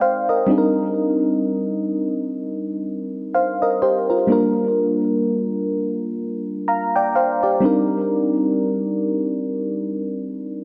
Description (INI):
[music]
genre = R&B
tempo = 63 BPM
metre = 4/4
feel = swing 58% on 16ths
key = C minor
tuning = A4 = 440 Hz
[part]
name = mellow FM electric piano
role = solo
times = 0.0-10.6 s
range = G3 to Bb5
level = -21 LUFS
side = equal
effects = chorus, delay
[sound]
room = moderate plate reverb, RT60 2.6 s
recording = none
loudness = -21 LUFS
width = mono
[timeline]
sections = 0.0-10.6 A section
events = none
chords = 0.5 Cm9; 4.3 Gm7; 7.6 Cm9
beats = | 0.49 1.44 2.39 3.34 | 4.29 5.25 6.20 7.15 | 8.11 9.06 10.01